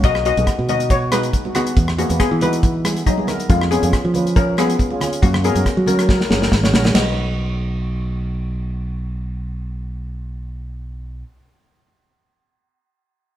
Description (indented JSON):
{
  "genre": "calypso",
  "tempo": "139 BPM",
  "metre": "4/4",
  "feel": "swing 54% on 16ths",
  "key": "B major",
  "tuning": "A4 = 440 Hz",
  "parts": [
    { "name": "steel pan", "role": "melody", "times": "0.0-11.2 s", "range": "F#3 to D#5", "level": "-21 LUFS", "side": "left 4 dB", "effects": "none" },
    { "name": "steel pan", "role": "accompaniment", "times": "0.0-11.2 s", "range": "B3 to C#5", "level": "-26 LUFS", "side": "right 2 dB", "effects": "none" },
    { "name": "modern bright fingered electric bass", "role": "bass", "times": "0.0-11.2 s", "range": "F#1 to F#3", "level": "-21 LUFS", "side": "right 1 dB", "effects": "none" },
    { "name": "warm soul drum kit", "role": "drums", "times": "0.0-7.1 s", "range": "hi-hat, kick drum, ride cymbal, rim click, snare drum", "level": "-19 LUFS", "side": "equal", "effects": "none" },
    { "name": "congas", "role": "percussion", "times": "0.4-7.1 s", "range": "none", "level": "-29 LUFS", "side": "right 4 dB", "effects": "none" }
  ],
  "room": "moderate stone room reverb, RT60 1.0 s",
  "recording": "band playing live in one room",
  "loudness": "-16 LUFS",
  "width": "side -12 dB against mid",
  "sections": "0.0-7.0 A section; 7.0-10.4 B section",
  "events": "drum fill 6.1-7.0",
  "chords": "0.0 B; 1.8 Eadd9; 3.5 C#/E#; 5.2 F#; 7.0 B"
}